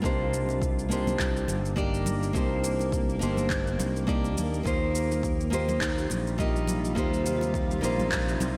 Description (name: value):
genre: sunset chillout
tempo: 104 BPM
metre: 4/4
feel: swing 56% on 16ths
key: unclear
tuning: A4 = 440 Hz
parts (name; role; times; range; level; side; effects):
- nylon-string guitar; accompaniment; 0.0-8.6 s; Bb3 to Eb5; -32 LUFS; equal; digital delay
- shimmering ambient pad; sustained chords; 0.0-8.6 s; C3 to F4; -39 LUFS; equal; chorus, built-in reverb
- modern bright fingered electric bass; bass; 0.0-8.6 s; G1 to Eb2; -32 LUFS; equal; none
- electronic kick drum; drums; 0.0-8.2 s; none; -34 LUFS; equal; overdrive
- electronic shaker and handclaps; drums; 0.0-8.5 s; none; -38 LUFS; equal; overdrive, gated reverb
- bongos and congas; percussion; 0.5-8.5 s; none; -38 LUFS; equal; none
room: moderate plate reverb, RT60 2.2 s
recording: bright 1980s-style digital production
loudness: -27 LUFS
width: mono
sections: 0.0-8.6 A section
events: none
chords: 0.0 Cm9; 4.7 Eb69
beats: | 0.04 0.62 1.19 1.77 | 2.35 2.92 3.50 4.08 | 4.66 5.23 5.81 6.39 | 6.96 7.54 8.12